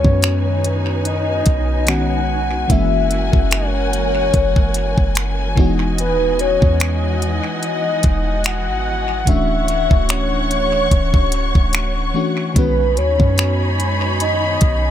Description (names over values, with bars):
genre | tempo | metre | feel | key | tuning
contemporary R&B | 73 BPM | 4/4 | swing 54% on 16ths | B major | A4 = 440 Hz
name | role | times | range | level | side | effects
soft octave-layered synth lead | melody | 0.0-14.9 s | B4 to F#5 | -21 LUFS | left 1 dB | chorus, phaser, dub echo
FM electric piano with soft pad layer | accompaniment | 0.0-14.9 s | D#3 to F#4 | -24 LUFS | left 2 dB | chorus, dub echo
dark studio string section | sustained chords | 0.0-14.9 s | E3 to C#6 | -24 LUFS | left 1 dB | sidechain pumping
clean 808-style bass | bass | 0.0-14.9 s | D1 to F#2 | -20 LUFS | equal | none
trap drum kit | drums | 0.0-14.8 s | finger snaps, hi-hat, kick drum | -17 LUFS | equal | none
room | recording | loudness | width
little or no reverb | echo-heavy mix | -15 LUFS | side -10 dB against mid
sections
0.0-14.9 A section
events
none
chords
0.0 B69; 2.7 F#9; 5.6 Emaj9; 9.3 Dmaj9; 12.6 B69